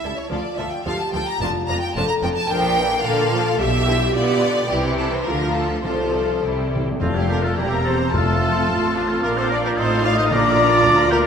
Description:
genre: quick classical-period movement for symphony orchestra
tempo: 109 BPM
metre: 2/4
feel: rubato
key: F major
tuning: A4 = 441 Hz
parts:
  - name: rich studio violin section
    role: melody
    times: 0.0-11.3 s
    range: D4 to Bb5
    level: -30 LUFS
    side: left 3 dB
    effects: none
  - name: clear studio violin section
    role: second line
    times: 0.0-11.2 s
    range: F4 to Bb5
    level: -25 LUFS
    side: equal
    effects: none
  - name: rich studio viola section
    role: accompaniment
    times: 0.0-11.3 s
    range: D3 to G4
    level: -26 LUFS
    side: right 2 dB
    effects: none
  - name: mellow French horn section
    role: sustained chords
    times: 0.0-11.2 s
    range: F3 to Bb4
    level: -25 LUFS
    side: left 4 dB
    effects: none
  - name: clear studio cello section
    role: bass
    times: 0.0-11.3 s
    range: C#2 to B3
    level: -28 LUFS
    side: right 2 dB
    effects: none
  - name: rich studio double bass section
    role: bass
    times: 0.0-11.3 s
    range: E1 to B2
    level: -26 LUFS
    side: right 2 dB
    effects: none
  - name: timpani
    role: percussion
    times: 1.4-2.2, 5.8-11.1 s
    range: F2 to C3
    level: -26 LUFS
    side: left 1 dB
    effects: none
  - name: dark clarinet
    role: second line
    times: 7.0-11.3 s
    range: F4 to G4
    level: -27 LUFS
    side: left 1 dB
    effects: none
  - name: mellow large flute ensemble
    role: second line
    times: 7.0-11.1 s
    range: A5 to Eb6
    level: -27 LUFS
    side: left 1 dB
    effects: none
  - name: warm oboe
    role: second line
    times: 7.0-11.2 s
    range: C4 to D5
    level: -27 LUFS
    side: equal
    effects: none
  - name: warm trumpet section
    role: stabs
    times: 7.0-11.3 s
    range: F4 to F5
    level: -22 LUFS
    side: left 1 dB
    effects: none
room: wet scoring stage reverb, RT60 1.7 s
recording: minimal, uncompressed stereo recording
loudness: -17 LUFS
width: side -7 dB against mid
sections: 0.0-7.0 A section; 7.0-11.3 B section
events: timpani fill 6.4-7.0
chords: 0.3 Dm; 1.4 Dm/F; 2.5 Bb; 3.6 G7/B; 4.7 C; 5.3 Dm; 5.8 F/C; 6.4 C; 7.0 F; 7.6 C7/E; 8.1 F; 9.2 Bb; 9.8 F7/A; 10.3 Bb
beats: | 0.32 0.86 | 1.41 1.96 | 2.50 3.04 | 3.60 4.15 | 4.71 5.27 | 5.85 6.43 | 7.02 7.58 | 8.13 8.69 | 9.23 9.77 | 10.31 10.85

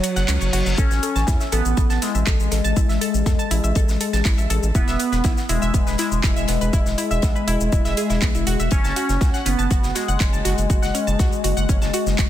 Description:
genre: melodic techno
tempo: 121 BPM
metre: 4/4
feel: straight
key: F# minor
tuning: A4 = 440 Hz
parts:
  - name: resonant sweep polysynth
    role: melody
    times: 0.0-12.3 s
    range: F#3 to C#4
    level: -24 LUFS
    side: left 3 dB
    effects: chorus, sidechain pumping, digital delay
  - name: analog pluck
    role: arpeggios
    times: 0.0-12.3 s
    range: B3 to A6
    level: -27 LUFS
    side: right 1 dB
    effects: chorus, sidechain pumping, digital delay
  - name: damped 70s drum kit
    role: drums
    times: 0.0-12.3 s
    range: hi-hat, snare drum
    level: -35 LUFS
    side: left 3 dB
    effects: sidechain pumping on hats, high-pass filter on hats, studio reverb, high-pass filter on snare, high-pass filter on room
  - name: house drum kit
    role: drums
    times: 0.0-12.3 s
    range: handclaps, hi-hat, shaker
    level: -28 LUFS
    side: equal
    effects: studio reverb
  - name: reverse cymbal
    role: sound effects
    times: 0.0-0.8 s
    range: none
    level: -30 LUFS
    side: left 1 dB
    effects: none
  - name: round analog bass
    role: bass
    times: 0.2-12.3 s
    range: E1 to E2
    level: -22 LUFS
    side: equal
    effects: sidechain pumping
  - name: electronic kick drum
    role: drums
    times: 0.8-12.3 s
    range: none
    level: -20 LUFS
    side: equal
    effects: studio reverb
room: digital ambience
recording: dense, heavily limited modern master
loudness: -17 LUFS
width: side -12 dB against mid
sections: 0.0-12.3 A section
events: break 0.0-0.8; reverse cymbal 0.0-0.8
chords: 0.0 F#5; 0.8 A5; 4.7 E; 8.7 F#m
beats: 0.29 | 0.78 1.28 1.77 2.27 | 2.77 3.26 3.76 4.25 | 4.75 5.25 5.74 6.24 | 6.73 7.23 7.72 8.22 | 8.72 9.21 9.71 10.20 | 10.70 11.20 11.69 12.19

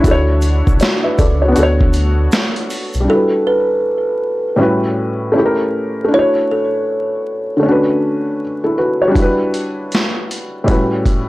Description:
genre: lo-fi hip hop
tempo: 79 BPM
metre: 4/4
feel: swing 64% on 16ths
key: E dorian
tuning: A4 = 440 Hz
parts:
  - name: felt-muted upright piano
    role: accompaniment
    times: 0.0-11.3 s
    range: A2 to E5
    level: -16 LUFS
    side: equal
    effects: low-pass filter
  - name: lush unison pad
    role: sustained chords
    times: 0.0-3.1 s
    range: A3 to C#5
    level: -26 LUFS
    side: right 1 dB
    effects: chorus, low-pass filter
  - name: sub bass with octave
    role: bass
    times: 0.0-3.1 s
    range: B1 to D2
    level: -15 LUFS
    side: equal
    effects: tube saturation
  - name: boom bap sampler-style drum kit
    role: drums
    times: 0.0-3.1, 9.2-11.3 s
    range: hi-hat, kick drum, snare drum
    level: -16 LUFS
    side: equal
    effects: none
  - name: tube shaker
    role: percussion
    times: 0.1-3.1 s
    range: none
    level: -37 LUFS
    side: right 4 dB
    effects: none
  - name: kalimba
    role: melody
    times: 3.1-7.1 s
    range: A4 to C#5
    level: -18 LUFS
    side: equal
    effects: low-pass filter, analog delay
room: light reverb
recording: dry, gritty hardware recording, transformer saturation, vinyl crackle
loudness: -13 LUFS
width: side -18 dB against mid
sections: 0.0-3.1 A section; 3.1-11.3 B section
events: none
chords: 0.0 Dmaj9; 1.6 Bm9/D; 3.1 Em9; 4.6 A13; 5.4 A7b9; 6.1 Dmaj9; 7.6 Bm9/D; 9.2 Em9; 10.7 A13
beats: | 0.04 0.80 1.56 2.32 | 3.08 3.84 4.60 5.36 | 6.12 6.88 7.64 8.40 | 9.16 9.92 10.68

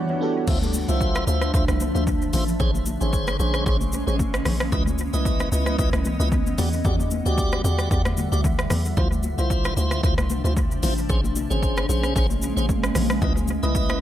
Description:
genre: amapiano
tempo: 113 BPM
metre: 4/4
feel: swing 55% on 16ths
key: unclear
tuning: A4 = 441 Hz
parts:
  - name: FM electric piano with soft pad layer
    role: accompaniment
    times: 0.0-0.5 s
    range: B3 to D5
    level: -30 LUFS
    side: right 3 dB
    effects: chorus, dub echo
  - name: granular cloud pad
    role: sustained chords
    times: 0.0-14.0 s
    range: C3 to F#5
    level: -28 LUFS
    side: equal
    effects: built-in reverb
  - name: tonewheel organ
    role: stabs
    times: 0.5-14.0 s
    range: Db4 to E5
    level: -29 LUFS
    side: equal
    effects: slow rotary speaker, dub echo
  - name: hollow log drum bass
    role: bass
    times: 0.5-14.0 s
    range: Ab1 to E2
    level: -24 LUFS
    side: equal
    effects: none
  - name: deep house drum kit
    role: drums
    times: 0.5-14.0 s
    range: crash cymbal, hi-hat, kick drum, rim click, shaker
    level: -25 LUFS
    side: equal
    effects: overdrive, dub echo
  - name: congas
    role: percussion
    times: 0.5-13.6 s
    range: none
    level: -32 LUFS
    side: left 5 dB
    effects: dub echo
room: digital ambience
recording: echo-heavy mix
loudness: -20 LUFS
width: side -12 dB against mid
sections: 0.5-14.0 A section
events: break 0.0-0.5; drop 0.5-14.0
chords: 0.5 Dm9; 2.6 Bbm9; 4.7 C#m9; 6.6 Em9; 9.0 Dm9; 11.1 Bbm9; 13.2 C#m9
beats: | 0.48 1.01 1.54 2.07 | 2.60 3.13 3.66 4.19 | 4.72 5.25 5.79 6.32 | 6.85 7.38 7.91 8.44 | 8.97 9.50 10.03 10.56 | 11.10 11.63 12.16 12.69 | 13.22 13.75

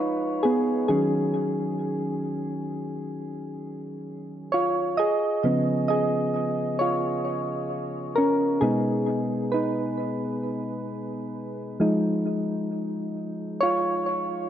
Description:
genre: R&B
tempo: 66 BPM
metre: 4/4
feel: straight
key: unclear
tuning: A4 = 442 Hz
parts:
  - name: soft electric-piano-like synth keys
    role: solo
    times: 0.0-14.5 s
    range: B2 to Eb5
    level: -24 LUFS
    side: equal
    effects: chorus, tape echo
room: moderate spring reverb, RT60 2.6 s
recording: echo-heavy mix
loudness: -23 LUFS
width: side -10 dB against mid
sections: 0.0-14.5 A section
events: synth keys solo 0.0-14.5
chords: 0.0 Fm7b5; 0.9 Ebm11; 5.0 Db9; 8.6 B6; 11.8 Dbadd9/F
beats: 0.43 | 1.34 2.25 3.16 4.07 | 4.98 5.89 6.80 7.71 | 8.62 9.53 10.43 11.34 | 12.25 13.16 14.07

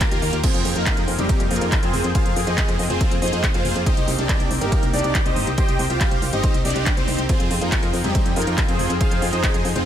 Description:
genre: uplifting trance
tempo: 140 BPM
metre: 4/4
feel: straight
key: F dorian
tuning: A4 = 440 Hz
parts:
  - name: supersaw chords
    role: melody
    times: 0.0-9.9 s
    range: G3 to G5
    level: -24 LUFS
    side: equal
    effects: lush chorus, cassette tape, sidechain pumping, dub echo
  - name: lush unison pad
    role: sustained chords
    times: 0.0-9.9 s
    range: Eb3 to G5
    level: -29 LUFS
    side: left 1 dB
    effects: chorus, vintage 12-bit sampler grit, sidechain pumping
  - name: electronic kick drum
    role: drums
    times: 0.0-9.5 s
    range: none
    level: -21 LUFS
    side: equal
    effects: none
  - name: techno drum kit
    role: drums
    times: 0.0-9.8 s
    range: crash cymbal, handclaps, hi-hat, ride cymbal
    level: -27 LUFS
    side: right 1 dB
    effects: none
  - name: solid FM bass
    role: bass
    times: 0.1-9.8 s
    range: F1 to F2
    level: -25 LUFS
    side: equal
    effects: sidechain pumping
room: digital ambience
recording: none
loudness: -18 LUFS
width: side -10 dB against mid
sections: 0.0-9.9 A section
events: none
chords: 0.4 Fm7; 3.9 Cm; 7.3 Fm7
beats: 0.01 | 0.43 0.86 1.29 1.72 | 2.15 2.58 3.01 3.44 | 3.86 4.29 4.72 5.15 | 5.58 6.01 6.43 6.86 | 7.29 7.72 8.15 8.58 | 9.01 9.44

